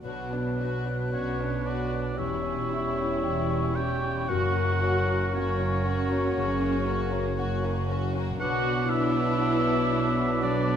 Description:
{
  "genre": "classical",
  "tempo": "58 BPM",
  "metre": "4/4",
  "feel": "rubato",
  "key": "unclear",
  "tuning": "A4 = 440 Hz",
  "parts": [
    { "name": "concert flute", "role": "second line", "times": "0.0-10.8 s", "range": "C#6 to F#6", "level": "-36 LUFS", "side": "left 1 dB", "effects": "none" },
    { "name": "warm clarinet", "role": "second line", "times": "0.0-10.8 s", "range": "A#4 to C#5", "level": "-36 LUFS", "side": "left 1 dB", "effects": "none" },
    { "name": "warm symphonic violin section", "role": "second line", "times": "0.0-10.8 s", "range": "G3 to F#4", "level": "-38 LUFS", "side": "left 2 dB", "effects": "none" },
    { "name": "mellow bassoon", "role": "accompaniment", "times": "0.0-10.8 s", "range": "F#3 to G3", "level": "-36 LUFS", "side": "right 1 dB", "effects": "none" },
    { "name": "mellow French horn section", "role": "sustained chords", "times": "0.0-10.8 s", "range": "A#3 to G4", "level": "-35 LUFS", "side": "left 4 dB", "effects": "none" },
    { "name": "concert harp", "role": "arpeggios", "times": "0.0-10.8 s", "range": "E2 to G5", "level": "-35 LUFS", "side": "left 9 dB", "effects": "none" },
    { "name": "warm studio cello section", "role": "bass", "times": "0.0-10.8 s", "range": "E2 to B2", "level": "-32 LUFS", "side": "right 2 dB", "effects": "none" },
    { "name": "warm symphonic double bass section", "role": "bass", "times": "0.0-10.8 s", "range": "E1 to B1", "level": "-33 LUFS", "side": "right 4 dB", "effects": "none" },
    { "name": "warm studio violin section", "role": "melody", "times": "0.1-10.8 s", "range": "C#4 to F#4", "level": "-37 LUFS", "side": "left 3 dB", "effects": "none" },
    { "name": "clear oboe", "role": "second line", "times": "1.1-10.8 s", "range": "C#5 to G5", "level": "-32 LUFS", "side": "right 1 dB", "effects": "none" },
    { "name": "dark symphonic viola section", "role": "accompaniment", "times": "1.1-10.8 s", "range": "C#4 to G4", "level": "-32 LUFS", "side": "right 1 dB", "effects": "none" }
  ],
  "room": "moderate scoring stage reverb, RT60 1.6 s",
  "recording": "none",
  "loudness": "-24 LUFS",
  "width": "side -8 dB against mid",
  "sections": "0.0-10.8 A section",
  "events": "none",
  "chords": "0.0 Bm; 2.2 C#dim/E; 4.3 F#; 8.4 Bm"
}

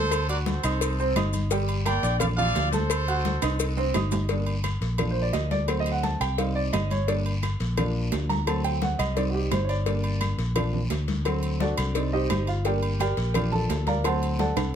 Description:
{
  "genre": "latin, salsa",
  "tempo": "172 BPM",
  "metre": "4/4",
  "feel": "straight",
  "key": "G minor",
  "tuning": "A4 = 440 Hz",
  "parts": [
    { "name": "bright trumpet section", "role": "melody", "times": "0.0-3.7 s", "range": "A4 to G5", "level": "-29 LUFS", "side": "right 2 dB", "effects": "none" },
    { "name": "warm baby grand piano", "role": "accompaniment", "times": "0.0-14.8 s", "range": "F3 to F#6", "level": "-28 LUFS", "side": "right 2 dB", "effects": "none" },
    { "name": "fingered electric bass", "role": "bass", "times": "0.0-14.8 s", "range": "G1 to D2", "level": "-27 LUFS", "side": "equal", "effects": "none" },
    { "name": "agogo bells and timbales", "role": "percussion", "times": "0.1-14.7 s", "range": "none", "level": "-34 LUFS", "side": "right 5 dB", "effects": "none" },
    { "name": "claves", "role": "percussion", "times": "0.1-14.7 s", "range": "none", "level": "-40 LUFS", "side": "left 12 dB", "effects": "none" },
    { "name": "congas", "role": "percussion", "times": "0.1-14.6 s", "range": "none", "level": "-33 LUFS", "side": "left 2 dB", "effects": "none" },
    { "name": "cowbell", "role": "percussion", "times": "0.1-14.7 s", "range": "none", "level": "-34 LUFS", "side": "left 6 dB", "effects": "none" },
    { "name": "guiro", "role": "percussion", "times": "0.1-14.7 s", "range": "none", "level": "-42 LUFS", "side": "left 2 dB", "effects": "none" },
    { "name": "maracas", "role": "percussion", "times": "0.1-4.3 s", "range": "none", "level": "-38 LUFS", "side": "left 8 dB", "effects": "none" }
  ],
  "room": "light reverb",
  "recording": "close, detailed microphones",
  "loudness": "-23 LUFS",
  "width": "side -8 dB against mid",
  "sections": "0.0-4.3 A section; 4.3-14.8 B section",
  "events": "drum fill 3.4-4.3, 14.6; grand piano solo 4.3-14.8",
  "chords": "0.1 D7; 0.8 Cm; 1.5 Gm; 2.2 Bb; 2.9 D7; 3.6 Cm; 4.3 Gm; 5.0 Bb; 5.7 D7; 6.4 Cm; 7.1 Gm; 7.8 Bb; 8.5 D7; 9.2 Cm; 9.9 Gm; 10.6 Bb; 11.3 D7; 12.0 Cm; 12.6 Gm; 13.3 Bb; 14.0 D7"
}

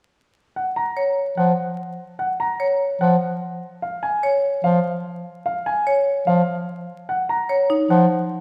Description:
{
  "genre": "classical, minimalist pattern music",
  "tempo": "147 BPM",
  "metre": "4/4",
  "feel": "straight",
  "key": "unclear",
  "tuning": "A4 = 441 Hz",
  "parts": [
    { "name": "warm grand piano", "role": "melody", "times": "0.6-8.2 s", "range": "F5 to Bb5", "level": "-26 LUFS", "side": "equal", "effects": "none" },
    { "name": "marimba with hard mallets", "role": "arpeggios", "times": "1.0-8.0 s", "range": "Eb4 to Db5", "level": "-24 LUFS", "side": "equal", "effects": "none" },
    { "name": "clear bass clarinet", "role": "accompaniment", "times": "1.4-8.1 s", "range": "F3", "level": "-22 LUFS", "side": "equal", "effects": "none" }
  ],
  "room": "wet recital hall reverb, RT60 1.5 s",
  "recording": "recorded in a church or concert hall, vinyl crackle",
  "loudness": "-21 LUFS",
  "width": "mono",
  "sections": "0.1-8.4 A section",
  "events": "none",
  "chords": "0.1 Gbmaj7(no3); 6.7 Ebm7"
}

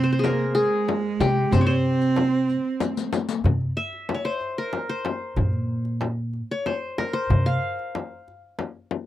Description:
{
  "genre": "Arabic maqam ensemble",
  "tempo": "62 BPM (dotted quarters)",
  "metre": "6/8",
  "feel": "straight",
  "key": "C maqam hijaz",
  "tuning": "A4 = 439 Hz",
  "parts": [
    { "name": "qanun", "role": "melody", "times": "0.0-8.4 s", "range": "G4 to F5", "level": "-26 LUFS", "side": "left 2 dB", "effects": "none" },
    { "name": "clear cello", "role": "second line", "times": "0.0-3.1 s", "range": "Ab3 to C4", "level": "-24 LUFS", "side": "right 5 dB", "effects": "tape echo" },
    { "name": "upright bass", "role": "bass", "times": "0.0-7.6 s", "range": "Bb2 to C3", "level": "-24 LUFS", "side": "equal", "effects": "none" },
    { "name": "darbuka", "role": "percussion", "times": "0.2-8.7 s", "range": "none", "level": "-27 LUFS", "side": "right 1 dB", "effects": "none" },
    { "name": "frame drum", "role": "percussion", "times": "0.2-9.1 s", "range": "none", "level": "-28 LUFS", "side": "left 5 dB", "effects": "none" },
    { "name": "riq", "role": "percussion", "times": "0.2-3.4 s", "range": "none", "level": "-31 LUFS", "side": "left 8 dB", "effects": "none" }
  ],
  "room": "light reverb",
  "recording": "dry, close 1970s-style studio recording",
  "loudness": "-22 LUFS",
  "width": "side -13 dB against mid",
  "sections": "0.0-3.4 A section; 3.4-9.1 B section",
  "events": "drum fill 2.8-3.4",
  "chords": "none"
}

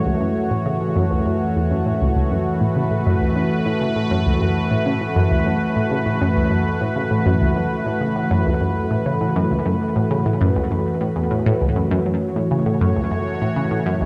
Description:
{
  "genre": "ambient, sequencer-driven space music",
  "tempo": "100 BPM",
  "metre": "4/4",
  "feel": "straight",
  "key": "unclear",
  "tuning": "A4 = 439 Hz",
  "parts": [
    { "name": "sweeping resonant pad", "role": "sustained chords", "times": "0.0-14.1 s", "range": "E3 to C#5", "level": "-23 LUFS", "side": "equal", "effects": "chorus" },
    { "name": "analog pluck", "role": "riff", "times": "0.1-14.1 s", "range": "C#2 to C#3", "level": "-23 LUFS", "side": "equal", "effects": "chorus, phaser, tape echo" }
  ],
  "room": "wet concert hall reverb, RT60 2.2 s",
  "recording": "none",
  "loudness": "-20 LUFS",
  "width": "mono",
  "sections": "0.0-12.1 A section; 12.1-14.1 A section",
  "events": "filter sweep on synth arpeggio sound 0.0-12.1",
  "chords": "0.0 F#m7"
}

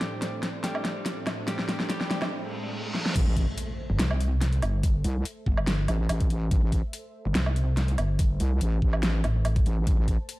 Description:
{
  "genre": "heavy wobble dubstep",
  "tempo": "143 BPM",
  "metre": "4/4",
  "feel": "swing 53% on 16ths, half-time",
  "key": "A minor",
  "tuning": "A4 = 440 Hz",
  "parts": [
    { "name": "clean electric guitar", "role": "melody", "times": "0.0-2.3 s", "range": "G3 to G4", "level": "-38 LUFS", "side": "equal", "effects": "spring reverb, digital delay" },
    { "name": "lush unison pad", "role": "sustained chords", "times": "0.0-10.4 s", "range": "A2 to A5", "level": "-40 LUFS", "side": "right 1 dB", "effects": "chorus, sidechain pumping" },
    { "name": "dubstep drum kit", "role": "drums", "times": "0.0-10.4 s", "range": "crash cymbal, hi-hat, snare drum, woodblock", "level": "-30 LUFS", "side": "equal", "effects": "studio reverb" },
    { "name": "riser, reverse cymbal and impact", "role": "sound effects", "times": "0.8-4.8 s", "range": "none", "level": "-37 LUFS", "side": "equal", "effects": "none" },
    { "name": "wobble bass", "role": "bass", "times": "3.2-10.2 s", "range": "A1 to C2", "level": "-25 LUFS", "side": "equal", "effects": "chorus, overdrive" },
    { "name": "electronic kick drum", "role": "drums", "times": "3.2-10.2 s", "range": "none", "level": "-25 LUFS", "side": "equal", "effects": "studio reverb" },
    { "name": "pulsing pluck wobble bass", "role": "bass", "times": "3.9-9.6 s", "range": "G1 to C2", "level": "-25 LUFS", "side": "equal", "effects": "chorus, overdrive" }
  ],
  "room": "little or no reverb",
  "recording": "dark, warm production",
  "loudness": "-24 LUFS",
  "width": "side -18 dB against mid",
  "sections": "0.0-3.2 A section; 3.2-10.4 B section",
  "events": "build-up 0.0-3.2; drum fill 0.0-2.3, 2.9; riser 0.8-3.2; break 2.3-3.2; reverse cymbal 2.3-3.2; drop 3.2-10.4; impact 3.2-4.8",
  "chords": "0.0 Am"
}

